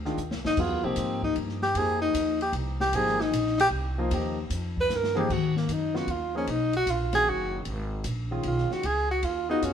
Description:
modal jazz; 152 BPM; 3/4; swing 67% on 8ths; F minor, G# dorian from 5.3 s; A4 = 441 Hz
upright bass; bass; 0.0-9.7 s; F#1 to Ab2; -32 LUFS; right 1 dB
warm grand piano; accompaniment; 0.1-9.7 s; C#3 to Ab4; -32 LUFS; left 2 dB
open jazz drum kit; drums; 0.1-9.7 s; crash cymbal, hi-hat, kick drum, ride cymbal, snare drum, toms; -35 LUFS; left 3 dB
mellow tenor saxophone; melody; 0.5-9.7 s; A#3 to B4; -26 LUFS; equal
moderate stone room reverb, RT60 1.1 s; band playing live in one room; -24 LUFS; side -8 dB against mid
0.0-5.3 A section; 5.3-9.7 A section
tenor saxophone solo 0.0-9.7; drum fill 0.2-0.6, 4.9-5.3
0.0 Fm9; 4.1 Eb; 5.3 G#m9; 7.7 A#m/G#
0.18 | 0.57 0.97 1.36 | 1.75 2.15 2.54 | 2.93 3.33 3.72 | 4.11 4.51 4.90 | 5.29 5.69 6.08 | 6.48 6.87 7.26 | 7.66 8.05 8.45 | 8.84 9.23 9.63

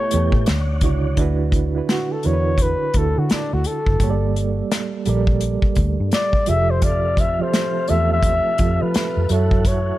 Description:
R&B, neo-soul; 85 BPM; 4/4; swing 62% on 16ths; A4 = 440 Hz
breathy flugelhorn; melody; 0.0-10.0 s; D4 to E5; -23 LUFS; left 2 dB; tape echo
reed electric piano; accompaniment; 0.0-10.0 s; D3 to E5; -24 LUFS; right 7 dB; fast tremolo
tonewheel organ; sustained chords; 0.0-1.2, 6.8-10.0 s; B2 to G4; -33 LUFS; left 1 dB; slow rotary speaker, chorus vibrato
vintage muted fingered electric bass; bass; 0.1-9.9 s; F1 to F3; -20 LUFS; equal
unplugged drum kit; drums; 0.1-9.8 s; hi-hat, kick drum, snare drum; -20 LUFS; equal
small room ambience; -17 LUFS; side -15 dB against mid
0.0-1.2 A section; 1.2-10.0 B section
flugelhorn solo 1.2-10.0
0.5 Dmaj7; 1.2 D69; 4.0 Gmadd9; 6.5 Fmaj7; 9.3 F#m7
0.47 | 1.17 1.88 2.59 3.29 | 4.00 4.70 5.41 6.12 | 6.82 7.53 8.23 8.94 | 9.64

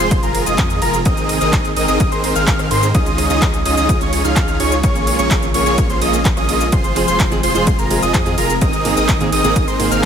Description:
EDM, festival progressive house; 127 BPM; 4/4; straight; Ab major; A4 = 440 Hz
lush unison pad; sustained chords; 0.0-10.1 s; Ab2 to F4; -25 LUFS; equal; chorus, sidechain pumping
wide unison lead; arpeggios; 0.0-10.1 s; Bb5 to F6; -20 LUFS; equal; sidechain pumping, digital delay
supersaw chords; riff; 0.0-10.1 s; Bb3 to F5; -19 LUFS; right 1 dB; sidechain pumping, digital delay
saturated sub bass; bass; 0.0-10.1 s; F1 to Ab2; -23 LUFS; equal; sidechain pumping
big-room dance drum kit; drums; 0.0-10.1 s; handclaps, hi-hat, ride cymbal, rim click, shaker; -23 LUFS; right 1 dB; overdrive
electronic kick drum; drums; 0.1-10.1 s; -18 LUFS; equal; overdrive
fingerpicked plugged-in steel-string acoustic guitar; accompaniment; 7.0-10.1 s; Ab2 to Ab4; -22 LUFS; right 3 dB; sidechain pumping, digital delay
light reverb; -13 LUFS; side -8 dB against mid
0.0-10.1 A section
0.0 Fm; 1.1 Abadd9; 2.9 Dbadd9; 4.8 Bbm7; 6.7 Fm; 8.6 Abadd9
0.11 0.58 | 1.06 1.53 2.00 2.47 | 2.95 3.42 3.89 4.36 | 4.84 5.31 5.78 6.25 | 6.73 7.20 7.67 8.14 | 8.62 9.09 9.56 10.03

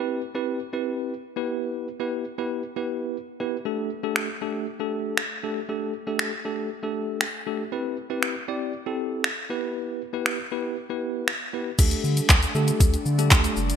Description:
dance-pop; 118 BPM; 4/4; straight; A4 = 436 Hz
bell-like tine electric piano; accompaniment; 0.0-13.6 s; A3 to D5; -28 LUFS; equal; medium stereo tremolo, sidechain pumping
smooth R&B drum kit; drums; 4.2-13.8 s; crash cymbal, finger snaps, handclaps, hi-hat, kick drum, shaker; -22 LUFS; equal; gated reverb
airy breathy pad; sustained chords; 12.2-13.8 s; G3 to D4; -31 LUFS; equal; chorus, phaser, sidechain pumping
round analog bass; bass; 11.8-13.7 s; F#1 to D3; -24 LUFS; equal; sidechain pumping
moderate plate reverb, RT60 2.3 s; bright 1980s-style digital production; -24 LUFS; side -8 dB against mid
0.0-11.8 A section; 11.8-13.8 B section
0.0 Cmaj7; 1.4 Em; 3.7 Dsus4; 7.7 Cmaj7; 9.5 Em; 11.8 Dsus4
0.09 0.60 1.11 | 1.62 2.13 2.63 3.14 | 3.65 4.16 4.67 5.18 | 5.69 6.19 6.70 7.21 | 7.72 8.23 8.74 9.24 | 9.75 10.26 10.77 11.28 | 11.79 12.30 12.80 13.31

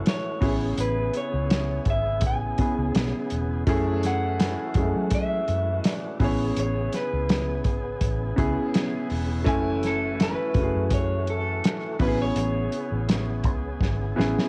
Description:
lush 1970s-style soul; 83 BPM; 4/4; swing 54% on 16ths; A major; A4 = 440 Hz
electric guitar through a small old amp; melody; 0.0-14.5 s; A4 to G#5; -32 LUFS; equal; cassette tape
warm baby grand piano; accompaniment; 0.0-14.5 s; G#3 to G#5; -31 LUFS; equal; cassette tape
tonewheel organ; sustained chords; 0.0-14.5 s; C#3 to G#4; -39 LUFS; equal; slow rotary speaker, overdrive, cassette tape
warm soul drum kit; drums; 0.1-14.5 s; hi-hat, kick drum, snare drum; -28 LUFS; equal
vintage muted fingered electric bass; bass; 0.4-14.3 s; E1 to F#3; -31 LUFS; equal
little or no reverb; home recording on cassette; -25 LUFS; mono
0.0-14.5 A section
drum fill 13.8-14.5
0.4 Amaj9; 3.7 F#m7; 6.2 Amaj9; 9.5 F#m7; 12.0 Amaj9
0.06 | 0.78 1.50 2.22 2.95 | 3.67 4.39 5.12 5.84 | 6.57 7.29 8.02 8.74 | 9.46 10.19 10.91 11.64 | 12.36 13.09 13.81

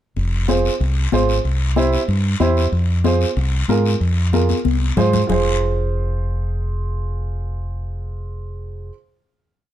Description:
latin, cumbia; 187 BPM; 4/4; straight; F harmonic minor; A4 = 440 Hz
deep dub fingered electric bass; bass; 0.2-8.9 s; F1 to Ab2; -19 LUFS; equal
congas; percussion; 0.2-5.4 s; -23 LUFS; left 9 dB
guiro; percussion; 0.2-5.4 s; -30 LUFS; left 6 dB
dark upright piano; accompaniment; 0.5-8.9 s; E4 to C5; -22 LUFS; right 5 dB
light reverb; dark, warm production; -16 LUFS; side -12 dB against mid
0.2-5.3 A section; 5.3-7.9 final chord
drum fill 4.5-5.3
0.2 Fm; 1.4 C; 2.7 Fm
| 0.17 0.48 0.81 1.12 | 1.45 1.76 2.08 2.41 | 2.73 3.05 3.37 3.69 | 4.01 4.33 4.65 4.97 | 5.29 5.61 5.93 6.25 | 6.57 6.89 7.21 7.53

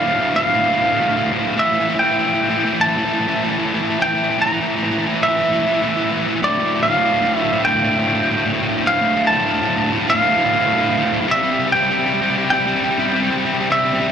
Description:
rock; 49 BPM (dotted quarters); 6/8; straight; D minor; A4 = 441 Hz
twangy electric guitar; melody; 0.0-14.1 s; D5 to Bb5; -18 LUFS; equal; analog delay
distorted electric guitar; riff; 0.0-14.1 s; D2 to G3; -18 LUFS; equal; distortion
moderate huge ambient reverb, RT60 9.1 s; -15 LUFS; side -8 dB against mid
0.0-14.1 A section
build-up 0.0-14.1
0.0 Dm; 1.6 A5; 6.4 Dm; 11.3 C5
0.35 | 1.57 2.78 | 4.00 5.21 | 6.42 7.64 | 8.85 10.07 | 11.28 12.49 | 13.71

